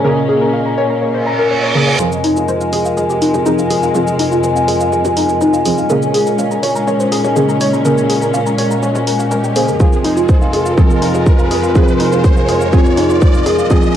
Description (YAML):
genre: melodic techno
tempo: 123 BPM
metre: 4/4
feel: straight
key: F minor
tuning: A4 = 442 Hz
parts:
  - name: muted studio string section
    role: sustained chords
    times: 0.0-14.0 s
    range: F2 to Db4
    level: -18 LUFS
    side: left 2 dB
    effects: sidechain pumping, cassette tape
  - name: woody wave-folded pluck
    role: arpeggios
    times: 0.0-13.8 s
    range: Eb4 to Db6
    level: -18 LUFS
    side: left 1 dB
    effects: lush chorus, sidechain pumping, cassette tape, tape echo
  - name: synth brass stab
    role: stabs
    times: 0.0-14.0 s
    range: Db3 to Ab4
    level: -19 LUFS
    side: right 2 dB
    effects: chorus, sidechain pumping, cassette tape, tape echo
  - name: warbly tape-like pad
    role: texture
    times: 0.0-14.0 s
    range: F4 to Ab5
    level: -18 LUFS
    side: equal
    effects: chorus, built-in reverb, sidechain pumping, cassette tape
  - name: reverse cymbal and riser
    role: sound effects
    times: 1.2-14.0 s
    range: none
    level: -23 LUFS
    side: right 1 dB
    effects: none
  - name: punchy analog drum machine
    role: drums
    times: 2.0-13.9 s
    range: hi-hat, shaker, toms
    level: -25 LUFS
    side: equal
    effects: sidechain pumping on toms, high-pass filter on toms, cassette tape, sidechain pumping on perc, high-pass filter on perc, sidechain pumping on hats, high-pass filter on hats
  - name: electronic kick drum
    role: drums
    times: 9.8-13.8 s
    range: none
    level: -11 LUFS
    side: equal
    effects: overdrive, cassette tape
room: moderate digital room reverb, RT60 1.1 s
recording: home recording on cassette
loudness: -11 LUFS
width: side -10 dB against mid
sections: 0.0-2.0 A section; 2.0-14.0 B section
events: filter sweep on synth pluck 0.0-2.0, 2.0-14.0; reverse cymbal 1.2-2.0; build-up 2.0-14.0; drum fill 2.0-14.0; riser 2.0-14.0; filter sweep on synth stab 2.0-14.0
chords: 0.0 Bbm7; 2.0 Fm; 5.9 Bbm7; 9.8 Fm